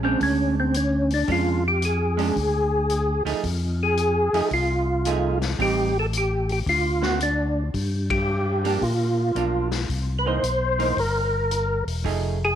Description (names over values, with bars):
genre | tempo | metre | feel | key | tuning
soul jazz organ trio | 112 BPM | 4/4 | swing 67% on 8ths | unclear | A4 = 440 Hz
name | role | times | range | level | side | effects
percussive tonewheel organ | melody | 0.0-12.6 s | C4 to C5 | -23 LUFS | equal | slow rotary speaker, chorus vibrato
vintage hollow-body jazz guitar | accompaniment | 0.0-12.4 s | D3 to Ab4 | -28 LUFS | right 10 dB | none
tonewheel organ | bass | 0.0-12.6 s | E1 to Bb2 | -25 LUFS | left 1 dB | chorus vibrato, slow rotary speaker
vintage drum kit | drums | 0.2-12.2 s | hi-hat, kick drum, ride cymbal, snare drum | -33 LUFS | left 4 dB | none
room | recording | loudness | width
light reverb | 1960s-style stereo | -20 LUFS | side -10 dB against mid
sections
0.0-12.6 A section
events
band accent 8.0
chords
0.0 Bb7#9 (rootless); 3.4 F7#9; 5.6 Am7b5; 6.7 Daug7; 7.7 Gm7; 9.9 C7#9; 12.0 F7#9